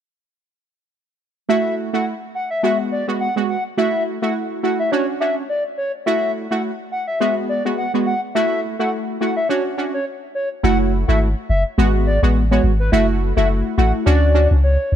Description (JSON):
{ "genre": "dancehall", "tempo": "105 BPM", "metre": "4/4", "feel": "swing 56% on 16ths", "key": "F# minor", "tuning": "A4 = 439 Hz", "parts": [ { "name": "hollow clarinet-like synth lead", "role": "melody", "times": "1.5-15.0 s", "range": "B4 to F#5", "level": "-22 LUFS", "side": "left 2 dB", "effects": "chorus, ping-pong delay" }, { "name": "synth brass stab", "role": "accompaniment", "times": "1.5-14.6 s", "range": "G#3 to F#4", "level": "-20 LUFS", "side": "right 2 dB", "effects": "chorus" }, { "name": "punchy sub bass", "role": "bass", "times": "10.6-15.0 s", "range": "F#1 to D2", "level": "-16 LUFS", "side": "equal", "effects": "none" } ], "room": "little or no reverb", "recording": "none", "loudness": "-16 LUFS", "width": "side -10 dB against mid", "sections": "1.5-10.6 A section; 10.6-15.0 B section", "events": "none", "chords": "1.5 F#m7; 2.6 G#m7; 3.8 F#m7; 4.9 Dmaj7; 6.1 F#m7; 7.2 G#m7; 8.4 F#m7; 9.5 Dmaj7; 10.6 F#m7; 11.8 G#m7; 12.9 F#m7; 14.1 Dmaj7" }